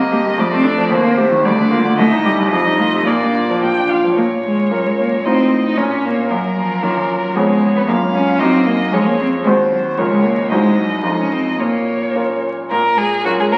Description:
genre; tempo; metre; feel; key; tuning
quick classical-period movement for piano trio; 113 BPM; 2/4; rubato; Bb major, Bb minor from 4.2 s; A4 = 441 Hz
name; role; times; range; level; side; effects
rich violin; melody; 0.0-13.6 s; Gb4 to G5; -22 LUFS; equal; none
bright concert grand piano; accompaniment; 0.0-13.6 s; C2 to C5; -20 LUFS; equal; none
rich cello; second line; 0.1-13.6 s; Eb3 to Eb4; -20 LUFS; equal; none
room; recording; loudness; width
wet recital hall reverb, RT60 1.8 s; very old 78 rpm record, vinyl crackle; -16 LUFS; mono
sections
0.0-4.2 A section; 4.2-12.7 B section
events
none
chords
0.4 Dm/F; 0.9 Cm/Eb; 1.4 Bb/D (rootless); 2.0 Cm; 2.5 F7; 3.1 Bb; 4.2 Bbm; 5.2 F7/A; 5.8 Bbm; 6.3 Gbmaj7; 7.3 Db7/F; 7.9 Gbmaj7; 8.4 Ebm/Gb; 8.9 Db/F; 9.4 Cdim/Eb; 10.0 Bbm/Db; 10.5 Cdim; 11.0 F7; 11.6 Bbm

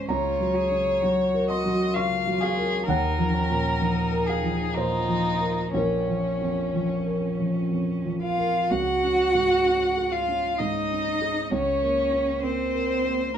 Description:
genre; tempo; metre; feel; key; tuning
neoclassical piano and strings; 60-66 BPM; 3/4; rubato; Bb minor; A4 = 440 Hz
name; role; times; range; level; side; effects
rich violin; melody; 0.0-13.4 s; Db4 to Gb5; -26 LUFS; left 2 dB; none
rich cello; second line; 0.0-13.4 s; C4 to Ab4; -29 LUFS; right 3 dB; none
felt-muted upright piano; accompaniment; 0.0-13.4 s; Bb1 to Db6; -26 LUFS; equal; none
room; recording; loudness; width
wet small room reverb, RT60 0.6 s; band playing live in one room; -22 LUFS; side -9 dB against mid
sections
0.0-8.7 A section; 8.7-13.4 B section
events
none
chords
0.1 Gbmaj7/Db; 2.9 Ebmadd9; 5.8 Bbm; 8.7 Dbsus2; 11.5 Bbmadd9/Db

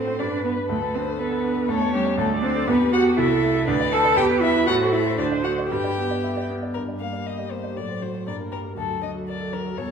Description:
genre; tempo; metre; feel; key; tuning
quick classical-period movement for piano quartet; 120 BPM; 2/4; straight; G major; A4 = 440 Hz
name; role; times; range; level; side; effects
muted violin; melody; 0.0-9.9 s; G4 to A5; -28 LUFS; left 8 dB; none
muted cello; second line; 0.0-9.9 s; F#3 to A4; -24 LUFS; right 5 dB; none
clear concert grand piano; accompaniment; 0.0-9.9 s; C2 to E5; -26 LUFS; left 2 dB; none
muted viola; accompaniment; 0.0-9.9 s; F#4 to D5; -30 LUFS; right 4 dB; none
room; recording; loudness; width
wet recital hall reverb, RT60 1.6 s; minimal, uncompressed stereo recording; -20 LUFS; side -6 dB against mid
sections
0.0-6.8 A section; 6.8-9.9 A section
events
none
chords
0.2 G; 0.7 D5; 1.7 C#dim/E; 2.2 D5; 2.7 Em; 3.2 Am/C; 3.7 D5; 4.2 Em; 4.7 Am; 5.2 D; 5.7 G; 6.8 Gm; 7.8 F#dim/A; 8.3 Gm; 8.8 D

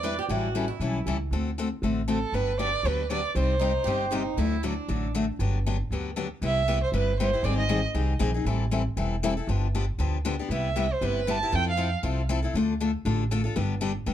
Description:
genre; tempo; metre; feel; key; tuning
acoustic string swing (jazz manouche); 235 BPM; 4/4; swing 55% on 8ths; G major, C major from 6.4 s; A4 = 440 Hz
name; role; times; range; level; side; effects
warm violin; melody; 0.0-4.2, 6.5-7.8, 10.5-11.9 s; A4 to A5; -28 LUFS; right 3 dB; tape echo
picked swing-style acoustic guitar; second line; 0.0-1.2, 3.6-5.1 s; D4 to B4; -34 LUFS; right 4 dB; none
picked steel-string acoustic guitar; accompaniment; 0.0-14.1 s; C3 to B4; -29 LUFS; left 4 dB; none
upright bass; bass; 0.0-14.1 s; E1 to F2; -28 LUFS; right 1 dB; none
room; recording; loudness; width
light reverb; dark, warm production; -24 LUFS; side -11 dB against mid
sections
0.0-6.4 A section; 6.4-14.1 B section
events
none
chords
0.3 A7; 1.3 D7; 2.3 Gmaj7; 3.4 Cm; 4.4 D; 5.4 Gmaj7; 6.4 Cmaj7; 7.4 Abmaj7; 8.5 Am7; 9.5 G7; 10.5 Cmaj7; 11.5 Fmaj7; 12.5 Dm; 13.6 G

